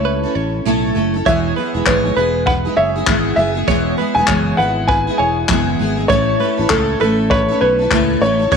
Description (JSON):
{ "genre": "acoustic pop", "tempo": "99 BPM", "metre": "4/4", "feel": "swing 60% on 16ths", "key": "unclear", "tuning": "A4 = 442 Hz", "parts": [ { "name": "warm upright piano", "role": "melody", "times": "0.0-8.6 s", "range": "A4 to G#5", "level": "-18 LUFS", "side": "left 1 dB", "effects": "slapback echo" }, { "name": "picked steel-string acoustic guitar", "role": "accompaniment", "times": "0.0-8.6 s", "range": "E2 to C#5", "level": "-18 LUFS", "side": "equal", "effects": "double-tracked left and right" }, { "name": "fingered electric bass", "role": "bass", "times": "0.0-8.6 s", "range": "E1 to C#2", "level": "-22 LUFS", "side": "equal", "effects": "none" }, { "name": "direct-recorded clean electric guitar", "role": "arpeggios", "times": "0.1-8.6 s", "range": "B4 to C#5", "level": "-23 LUFS", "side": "right 11 dB", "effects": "tremolo" }, { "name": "vintage brush drum kit", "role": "drums", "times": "1.3-8.6 s", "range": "handclaps, kick drum", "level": "-20 LUFS", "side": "left 3 dB", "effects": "none" } ], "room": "light reverb, small room reverb", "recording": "1960s-style stereo", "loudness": "-13 LUFS", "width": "side -6 dB against mid", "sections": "0.0-8.6 A section", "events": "none", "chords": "0.0 A; 1.3 E; 6.1 A" }